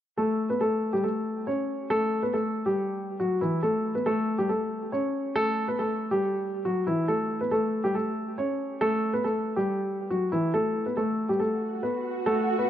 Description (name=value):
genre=hip hop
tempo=139 BPM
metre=4/4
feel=half-time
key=unclear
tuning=A4 = 439 Hz
part: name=dark baby grand piano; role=melody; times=0.2-12.7 s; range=E3 to C#5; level=-25 LUFS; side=equal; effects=low-pass filter, digital delay
part: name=swell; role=sound effects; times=11.5-12.7 s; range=none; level=-31 LUFS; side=right 3 dB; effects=none
room=moderate lush hall reverb, RT60 2.6 s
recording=none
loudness=-25 LUFS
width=side -11 dB against mid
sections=0.2-12.7 A section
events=swell 11.5-12.7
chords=0.2 Emadd11 (rootless); 10.5 B5